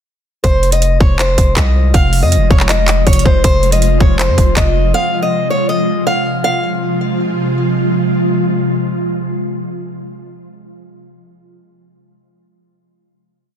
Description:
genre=hip hop, trap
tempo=160 BPM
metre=4/4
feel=half-time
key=F minor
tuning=A4 = 441 Hz
part: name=picked acoustic archtop guitar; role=melody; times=0.4-7.5 s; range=C5 to F5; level=-17 LUFS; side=left 1 dB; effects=ping-pong delay
part: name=ethereal airy pad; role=sustained chords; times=1.5-10.2 s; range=C3 to F4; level=-17 LUFS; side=equal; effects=ensemble chorus, built-in reverb
part: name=long sustained 808-style bass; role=bass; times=0.4-4.9 s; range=F1 to F2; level=-14 LUFS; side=equal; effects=none
part: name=trap drum kit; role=drums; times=0.4-4.7 s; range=handclaps, hi-hat, kick drum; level=-13 LUFS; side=equal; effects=none
room=little or no reverb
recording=dense, heavily limited modern master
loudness=-11 LUFS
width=side -9 dB against mid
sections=0.4-6.4 hook; 6.4-9.4 final chord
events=none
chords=0.4 Fm

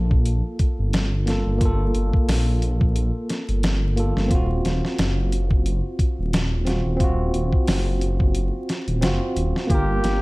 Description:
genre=trip hop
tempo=89 BPM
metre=4/4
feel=swing 56% on 16ths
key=G minor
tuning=A4 = 440 Hz
part: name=bell-like tine electric piano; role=accompaniment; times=0.0-10.2 s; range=Bb3 to Bb4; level=-27 LUFS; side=equal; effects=harmonic tremolo, tape echo
part: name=dark detuned saw bass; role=bass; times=0.0-10.2 s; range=Eb1 to Bb1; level=-22 LUFS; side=equal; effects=tube saturation
part: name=dusty soul sampler-style drum kit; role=drums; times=0.1-10.2 s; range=hi-hat, kick drum, snare drum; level=-22 LUFS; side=equal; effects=none
part: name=trumpet with bucket mute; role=melody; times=9.7-10.2 s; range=G4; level=-24 LUFS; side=equal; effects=none
room=digital ambience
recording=dark, warm production, vinyl crackle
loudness=-19 LUFS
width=side -22 dB against mid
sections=0.0-10.2 A section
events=none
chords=0.0 Gm7; 4.3 Ebm6; 9.7 Gm7

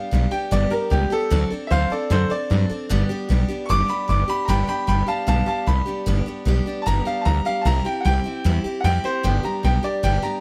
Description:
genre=rock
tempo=151 BPM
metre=4/4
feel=straight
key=G mixolydian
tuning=A4 = 439 Hz
part: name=bright upright piano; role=melody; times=0.0-10.4 s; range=G4 to D6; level=-26 LUFS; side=equal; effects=none
part: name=picked steel-string acoustic guitar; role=accompaniment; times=0.0-10.4 s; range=G2 to A4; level=-28 LUFS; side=equal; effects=none
part: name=upright bass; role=bass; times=0.1-10.3 s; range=G1 to G2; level=-22 LUFS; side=equal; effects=none
room=small room ambience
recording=none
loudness=-21 LUFS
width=mono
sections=0.0-4.5 A section; 4.5-10.4 A section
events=upright piano solo 0.0-10.4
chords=0.0 G; 1.3 D7; 2.9 G; 7.7 C; 9.2 G

